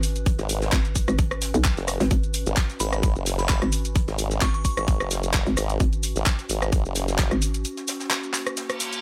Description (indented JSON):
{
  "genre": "bass house",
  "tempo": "130 BPM",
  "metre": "4/4",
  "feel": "swing 54% on 16ths",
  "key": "G# minor",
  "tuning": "A4 = 441 Hz",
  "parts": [
    { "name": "hollow knocking FM bass", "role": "bass", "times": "0.0-7.6 s", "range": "G#1 to B1", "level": "-27 LUFS", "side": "equal", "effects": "overdrive, sidechain pumping" },
    { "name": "garage drum kit", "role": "drums", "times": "0.0-9.0 s", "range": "handclaps, hi-hat, rim click, shaker", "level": "-30 LUFS", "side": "equal", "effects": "overdrive" },
    { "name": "jazz brush drum kit", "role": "drums", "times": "0.0-9.0 s", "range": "hi-hat, snare drum", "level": "-43 LUFS", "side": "equal", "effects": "none" },
    { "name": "warbly tape-like pad", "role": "texture", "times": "0.0-9.0 s", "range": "A#3 to B4", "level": "-39 LUFS", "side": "equal", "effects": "chorus, built-in reverb, sidechain pumping" },
    { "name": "electronic kick drum", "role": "drums", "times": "0.3-7.3 s", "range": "none", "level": "-24 LUFS", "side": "equal", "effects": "overdrive" },
    { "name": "formant-sweep wobble bass", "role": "bass", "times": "0.4-7.3 s", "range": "F#1 to G#1", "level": "-28 LUFS", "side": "equal", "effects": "chorus, tube saturation, sidechain pumping" },
    { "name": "glassy synth bell", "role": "melody", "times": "2.8-4.8 s", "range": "B5 to C#6", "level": "-36 LUFS", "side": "equal", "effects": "chorus, tape echo" },
    { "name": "reverse cymbal", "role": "sound effects", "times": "8.7-9.0 s", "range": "none", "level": "-32 LUFS", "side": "equal", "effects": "none" }
  ],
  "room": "little or no reverb",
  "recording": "none",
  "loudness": "-24 LUFS",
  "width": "mono",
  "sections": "0.0-9.0 A section",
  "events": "break 7.6-9.0; reverse cymbal 8.7",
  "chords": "0.0 G#m"
}